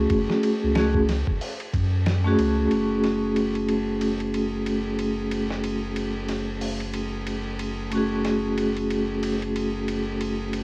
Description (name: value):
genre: trip hop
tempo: 92 BPM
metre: 4/4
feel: swing 58% on 16ths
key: F# minor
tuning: A4 = 440 Hz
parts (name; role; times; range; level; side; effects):
- vibraphone with medium hard mallets; accompaniment; 0.0-10.6 s; A3 to G#4; -23 LUFS; equal; tremolo, cassette tape, tape echo
- warm sub bass; bass; 0.0-10.6 s; F#1 to F#2; -29 LUFS; equal; none
- dusty soul sampler-style drum kit; drums; 0.1-10.6 s; hi-hat, kick drum, ride cymbal, snare drum; -31 LUFS; equal; high-pass filter on kick, studio reverb, cassette tape, high-pass filter on hats, high-pass filter on cymbals, high-pass filter on snare
room: light reverb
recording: home recording on cassette, vinyl crackle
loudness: -22 LUFS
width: side -25 dB against mid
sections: 0.0-2.7 A section; 2.7-10.6 B section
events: none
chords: 0.0 F#madd9